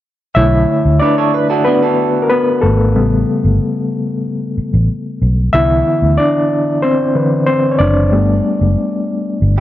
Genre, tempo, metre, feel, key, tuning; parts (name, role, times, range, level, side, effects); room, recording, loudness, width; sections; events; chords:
soul; 93 BPM; 4/4; straight; B minor; A4 = 440 Hz
overdriven reed electric piano; accompaniment; 0.3-9.6 s; C#3 to E5; -13 LUFS; left 1 dB; fast tremolo
vintage muted fingered electric bass; bass; 0.4-9.6 s; F#1 to D2; -13 LUFS; equal
electric guitar through a small old amp; riff; 1.0-2.8, 9.6 s; D4 to D5; -18 LUFS; right 7 dB
light reverb; -12 LUFS; side -13 dB against mid
0.4-9.6 A section
reed electric piano solo 0.4-9.6
0.4 Bm7; 3.0 A7; 5.5 Cmaj7; 8.1 Gadd9